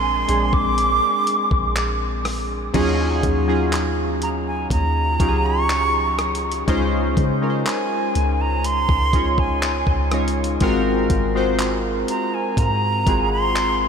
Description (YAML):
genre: contemporary R&B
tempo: 61 BPM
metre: 4/4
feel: straight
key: Eb dorian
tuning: A4 = 437 Hz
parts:
  - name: bright silver concert flute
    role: melody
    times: 0.0-13.9 s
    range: Ab5 to D6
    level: -22 LUFS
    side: right 2 dB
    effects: tape echo
  - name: warm analog keys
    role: accompaniment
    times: 0.0-13.9 s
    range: Gb3 to Db5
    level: -22 LUFS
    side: left 1 dB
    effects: chorus
  - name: soft 808-style bass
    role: bass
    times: 0.0-13.9 s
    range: Ab1 to Db3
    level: -24 LUFS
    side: equal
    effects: none
  - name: dusty soul sampler-style drum kit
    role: drums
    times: 0.3-13.8 s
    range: crash cymbal, handclaps, hi-hat, kick drum, rim click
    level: -25 LUFS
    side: equal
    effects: none
room: wet cathedral reverb, RT60 6.2 s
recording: dreamy mix soaked in reverb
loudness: -17 LUFS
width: side -6 dB against mid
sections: 0.0-2.7 A section; 2.7-13.9 B section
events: none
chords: 0.0 Bb9; 2.7 Ebm11; 6.7 Dbmaj9; 10.6 Ab13